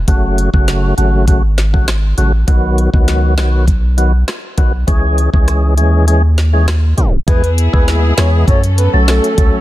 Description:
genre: dancehall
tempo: 100 BPM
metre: 4/4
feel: straight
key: E major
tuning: A4 = 440 Hz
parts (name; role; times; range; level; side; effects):
- punchy sub bass; bass; 0.0-9.5 s; F#1 to F#2; -12 LUFS; equal; none
- percussive tonewheel organ; accompaniment; 0.1-9.6 s; C#3 to A4; -17 LUFS; left 1 dB; overdrive, chorus vibrato, slow rotary speaker
- island pop drum kit; drums; 0.1-9.5 s; hi-hat, kick drum, rim click, snare drum; -14 LUFS; equal; none
- breathy flute-like synth lead; melody; 7.3-9.5 s; A4 to C#5; -20 LUFS; equal; chorus, digital delay
- warm studio string section; sustained chords; 7.3-9.6 s; F#3 to A4; -22 LUFS; left 1 dB; sidechain pumping
room: digital ambience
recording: dense, heavily limited modern master, tape stop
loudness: -10 LUFS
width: side -15 dB against mid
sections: 0.0-7.3 A section; 7.3-9.6 B section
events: kick muted 6.1-7.3; tape stop 7.0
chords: 0.1 F#m; 2.5 B; 4.9 C#m; 7.3 E; 8.5 F#m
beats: | 0.08 0.68 1.28 1.88 | 2.48 3.08 3.68 4.28 | 4.88 5.48 6.08 6.68 | 7.28 7.88 8.48 9.08

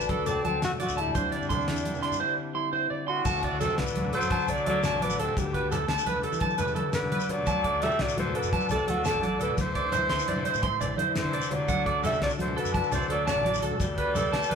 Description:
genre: highlife guitar band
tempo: 114 BPM (dotted quarters)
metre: 12/8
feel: straight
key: D mixolydian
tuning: A4 = 435 Hz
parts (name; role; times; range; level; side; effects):
- breathy alto saxophone; melody; 0.0-14.6 s; D4 to E5; -31 LUFS; equal; none
- raspy tenor saxophone; second line; 0.0-14.6 s; A2 to D4; -36 LUFS; left 4 dB; none
- nylon-string guitar; accompaniment; 0.0-14.6 s; A2 to B4; -36 LUFS; left 6 dB; none
- electric guitar at the edge of break-up; arpeggios; 0.0-14.6 s; A4 to C6; -30 LUFS; right 4 dB; none
- fingered electric bass; bass; 0.0-14.6 s; A1 to E3; -36 LUFS; left 1 dB; none
- shekere; percussion; 0.0-14.6 s; none; -39 LUFS; left 6 dB; none
- damped 70s drum kit; drums; 0.1-14.6 s; crash cymbal, hi-hat, kick drum, snare drum; -34 LUFS; equal; none
- congas; percussion; 0.1-14.6 s; none; -34 LUFS; right 2 dB; none
- overdriven tonewheel organ; sustained chords; 3.2-14.6 s; B3 to C5; -40 LUFS; equal; none
room: moderate large studio reverb, RT60 1.1 s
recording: band playing live in one room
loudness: -25 LUFS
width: side -6 dB against mid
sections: 0.0-3.3 A section; 3.3-14.6 B section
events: drum fill 11.2-11.7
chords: 0.0 D; 1.1 Cadd9/D; 3.3 D; 5.4 Gadd9/D; 7.5 D; 9.6 Cadd9/D; 11.7 D; 13.8 Gadd9/D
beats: 0.10 0.62 | 1.15 1.68 2.20 2.73 | 3.26 3.78 4.31 4.84 | 5.36 5.89 6.42 6.94 | 7.47 8.00 8.52 9.05 | 9.58 10.11 10.63 11.16 | 11.69 12.22 12.75 13.27 | 13.80 14.33

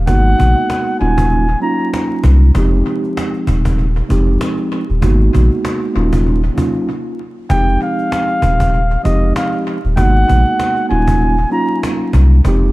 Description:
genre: hip hop, boom-bap hip-hop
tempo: 97 BPM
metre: 4/4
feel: swing 57% on 16ths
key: unclear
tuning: A4 = 442 Hz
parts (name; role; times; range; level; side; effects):
- warm sub bass; bass; 0.0-12.7 s; Eb1 to C2; -12 LUFS; equal; none
- trumpet with bucket mute; melody; 0.1-1.9, 7.5-11.8 s; Eb5 to Bb5; -18 LUFS; equal; high-pass filter, low-pass filter, analog delay
- mellow tine electric piano; accompaniment; 0.1-12.7 s; F3 to G4; -18 LUFS; right 1 dB; medium stereo tremolo, high-pass filter, low-pass filter, analog delay
- cajon; drums; 0.1-12.7 s; none; -21 LUFS; equal; analog delay
room: studio ambience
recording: echo-heavy mix, vinyl crackle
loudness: -12 LUFS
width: side -19 dB against mid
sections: 0.0-12.7 A section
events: break 6.9-7.5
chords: 0.1 Abm9; 1.0 Ebm9; 2.5 Fm9; 5.0 Abm9; 6.0 Ebm9; 7.5 Fm9; 10.0 Abm9; 10.9 Ebm9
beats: | 0.08 0.69 1.31 1.93 | 2.55 3.17 3.79 4.41 | 5.03 5.64 6.26 6.88 | 7.50 8.12 8.74 9.35 | 9.97 10.59 11.21 11.83 | 12.45

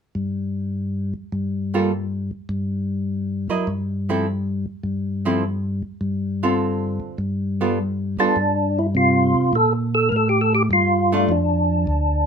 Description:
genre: soul jazz organ trio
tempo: 102 BPM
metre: 4/4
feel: swing 68% on 8ths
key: C mixolydian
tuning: A4 = 440 Hz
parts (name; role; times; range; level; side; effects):
- mellow tonewheel organ; bass; 0.2-12.3 s; D2 to C3; -22 LUFS; left 1 dB; slow rotary speaker
- archtop guitar, miked and amplified; accompaniment; 1.7-11.3 s; D3 to D#5; -22 LUFS; right 2 dB; none
- percussive tonewheel organ; melody; 8.2-12.3 s; D4 to Bb4; -19 LUFS; equal; slow rotary speaker, chorus vibrato
room: moderate club reverb, RT60 0.6 s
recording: minimal, uncompressed stereo recording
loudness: -19 LUFS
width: side -6 dB against mid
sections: 0.0-9.0 A section; 9.0-12.3 B section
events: none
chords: 0.0 N.C.; 3.1 F#6; 4.3 F; 6.6 Dm7; 7.8 G9; 9.0 C7sus4; 11.3 Dm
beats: 0.16 0.75 1.33 | 1.92 2.50 3.09 3.68 | 4.26 4.85 5.44 6.03 | 6.61 7.20 7.79 8.37 | 8.96 9.54 10.13 10.71 | 11.30 11.89

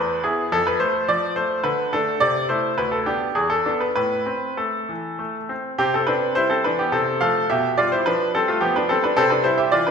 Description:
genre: classical, baroque-style suite movement for grand piano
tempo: 106 BPM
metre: 3/4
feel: rubato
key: A minor, C major from 5.8 s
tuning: A4 = 440 Hz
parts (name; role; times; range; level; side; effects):
- bright grand piano; solo; 0.0-9.9 s; D2 to F5; -18 LUFS; equal; none
room: wet scoring stage reverb, RT60 1.5 s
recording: recorded in a church or concert hall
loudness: -19 LUFS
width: side -6 dB against mid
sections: 0.0-5.8 A section; 5.8-9.9 A section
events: none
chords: 0.0 E; 0.5 F6; 1.6 D5; 2.2 Am/C; 2.8 Gadd9/D; 3.3 E5; 4.0 Am; 5.8 C; 6.9 F/C; 7.5 G7/B; 9.2 C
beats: | 0.52 1.08 1.64 | 2.21 2.77 3.35 | 3.95 4.57 5.18 | 5.78 6.36 6.92 | 7.49 8.06 8.62 | 9.17 9.72

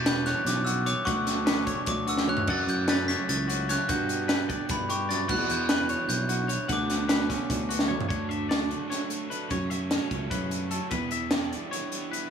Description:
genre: math rock and midwest emo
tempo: 299 BPM (eighths)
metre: 7/8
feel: straight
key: unclear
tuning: A4 = 440 Hz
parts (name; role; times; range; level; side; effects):
- twelve-string electric guitar; accompaniment; 0.0-12.3 s; D2 to F#4; -36 LUFS; right 7 dB; none
- twangy electric guitar; arpeggios; 0.0-12.3 s; C#4 to F#5; -35 LUFS; left 8 dB; none
- overdriven electric guitar; riff; 0.0-12.3 s; F#2 to F#4; -36 LUFS; right 2 dB; none
- fingered electric bass; bass; 0.0-11.5 s; E1 to G2; -31 LUFS; equal; none
- glockenspiel with hard plastic mallets; melody; 0.1-7.7 s; B5 to B6; -30 LUFS; equal; digital delay
- crisp fusion drum kit; drums; 0.1-12.2 s; crash cymbal, hi-hat, kick drum, snare drum, toms; -29 LUFS; equal; none
room: light reverb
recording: small room ambience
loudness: -25 LUFS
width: side -7 dB against mid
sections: 0.0-8.1 A section; 8.1-12.3 B section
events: drum fill 2.2-2.5, 7.8-8.1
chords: 0.0 Em9; 1.1 Bm/D; 2.5 F#m7; 3.9 Gmaj9; 5.3 Em9; 6.7 Bm7/D; 8.1 Dmaj7; 9.5 F#m7; 10.9 Em7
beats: 0.06 0.26 0.46 0.67 0.87 | 1.07 1.27 1.47 1.67 1.87 2.07 2.27 | 2.48 2.68 2.88 3.08 3.28 3.48 3.68 | 3.88 4.08 4.28 4.49 4.69 4.89 5.09 | 5.29 5.49 5.69 5.89 6.09 6.29 6.49 | 6.69 6.89 7.09 7.29 7.50 7.70 7.90 | 8.10 8.30 8.50 8.70 8.90 9.10 9.30 | 9.51 9.71 9.91 10.11 10.31 10.51 10.71 | 10.91 11.11 11.31 11.51 11.71 11.91 12.11

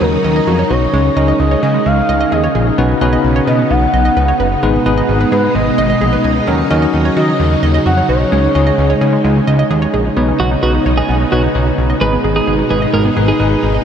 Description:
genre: synth-pop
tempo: 130 BPM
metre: 4/4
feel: straight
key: unclear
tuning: A4 = 440 Hz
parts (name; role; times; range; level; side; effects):
- expressive synth lead; melody; 0.0-9.7 s; Bb4 to Gb5; -19 LUFS; equal; chorus, tape echo
- bell-like tine electric piano; accompaniment; 0.0-13.8 s; Cb4 to Db5; -20 LUFS; left 2 dB; medium stereo tremolo
- string machine, violins; sustained chords; 0.0-13.8 s; Cb3 to Eb4; -17 LUFS; equal; ensemble chorus
- analog pluck; arpeggios; 0.0-13.8 s; Gb3 to Eb5; -21 LUFS; right 3 dB; chorus, tape echo
- fat analog bass; bass; 0.0-13.8 s; Gb1 to Eb3; -15 LUFS; equal; none
- twelve-string electric guitar; second line; 10.4-13.5 s; Gb4 to Cb5; -19 LUFS; right 4 dB; vibrato effect, tape echo
room: wet huge ambient reverb, RT60 8.3 s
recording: dreamy mix soaked in reverb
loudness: -11 LUFS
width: side -8 dB against mid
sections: 0.0-10.2 A section; 10.2-13.8 B section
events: none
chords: 0.0 Ebm7; 0.9 Dbsus2; 2.8 Cbadd9; 4.6 Abm; 6.5 Ebm7; 8.3 Dbsus2; 10.2 Cbadd9; 12.0 Abm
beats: 0.01 0.47 | 0.94 1.40 1.86 2.32 | 2.78 3.24 3.71 4.17 | 4.63 5.09 5.55 6.01 | 6.47 6.94 7.40 7.86 | 8.32 8.78 9.24 9.71 | 10.17 10.63 11.09 11.55 | 12.01 12.47 12.94 13.40

